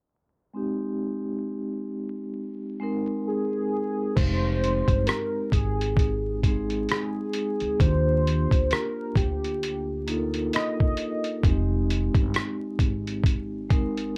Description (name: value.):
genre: lo-fi hip hop.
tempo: 66 BPM.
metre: 4/4.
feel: swing 57% on 16ths.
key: F dorian.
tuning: A4 = 440 Hz.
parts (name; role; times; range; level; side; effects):
vibraphone with soft mallets; accompaniment; 0.5-14.2 s; Ab3 to Bb4; -32 LUFS; equal; cassette tape, low-pass filter.
warm velvety synth lead; melody; 3.3-11.4 s; G4 to Eb5; -32 LUFS; equal; chorus, low-pass filter.
upright bass; bass; 4.2-14.1 s; F1 to Eb2; -30 LUFS; equal; none.
lo-fi sampler-style drum kit; drums; 4.2-14.2 s; crash cymbal, hi-hat, kick drum, rim click; -27 LUFS; equal; none.
room: light reverb.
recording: vinyl crackle, low-pass filter.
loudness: -26 LUFS.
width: mono.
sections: 0.5-4.2 A section; 4.2-14.2 B section.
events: filter sweep 0.5-4.2.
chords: 0.5 Abmaj9; 4.2 Fm7; 7.8 Ebmaj9; 11.4 Fm7.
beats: | 0.53 1.44 2.35 3.26 | 4.17 5.08 5.99 6.90 | 7.80 8.71 9.62 10.53 | 11.44 12.35 13.26 14.17.